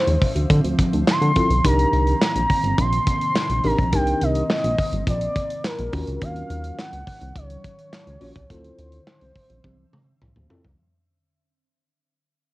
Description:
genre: early-eighties boogie funk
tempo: 105 BPM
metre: 4/4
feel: straight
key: unclear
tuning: A4 = 444 Hz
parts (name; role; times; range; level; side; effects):
- gliding portamento lead; melody; 0.0-10.2 s; Bb4 to C6; -25 LUFS; equal; chorus, cassette tape
- glassy FM pad; sustained chords; 0.0-10.8 s; C3 to E5; -29 LUFS; right 1 dB; ensemble chorus, built-in reverb, cassette tape
- chorused synth bass; bass; 0.1-10.8 s; G1 to D3; -22 LUFS; equal; none
- modern studio drum kit; drums; 0.1-10.8 s; handclaps, hi-hat, kick drum, snare drum, toms; -23 LUFS; equal; cassette tape
- mellow tine electric piano; accompaniment; 1.4-10.6 s; C4 to Db5; -25 LUFS; left 1 dB; fast stereo tremolo, cassette tape
room: light reverb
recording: home recording on cassette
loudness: -18 LUFS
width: side -19 dB against mid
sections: 0.0-10.8 A section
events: fade-out 0.0-10.8; drum fill 9.6-10.8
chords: 0.0 Dm9; 1.6 Cm9; 5.9 Ebm9; 8.5 Dm9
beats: 0.50 1.07 | 1.64 2.22 2.79 3.36 | 3.93 4.50 5.07 5.64 | 6.22 6.79 7.36 7.93 | 8.50 9.07 9.64 10.22

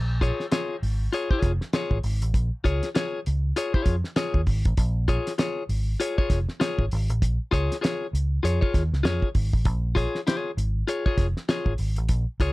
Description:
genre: funk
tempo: 98 BPM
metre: 4/4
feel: swing 60% on 16ths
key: Bb minor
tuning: A4 = 442 Hz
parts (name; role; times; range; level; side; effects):
- vintage muted fingered electric bass; bass; 0.0-12.5 s; F1 to F2; -24 LUFS; equal; none
- clean electric guitar; accompaniment; 0.2-12.5 s; F4 to Db5; -27 LUFS; left 3 dB; none
- cloth-damped thuddy drum kit; drums; 0.2-12.5 s; hi-hat, kick drum, snare drum; -26 LUFS; equal; none
room: little or no reverb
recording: none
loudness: -22 LUFS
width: side -20 dB against mid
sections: 0.0-12.5 A section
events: none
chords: 0.0 Bbm7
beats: 0.52 1.13 1.74 | 2.35 2.95 3.56 4.17 | 4.78 5.39 6.00 6.61 | 7.22 7.83 8.44 9.05 | 9.66 10.27 10.88 11.48 | 12.09

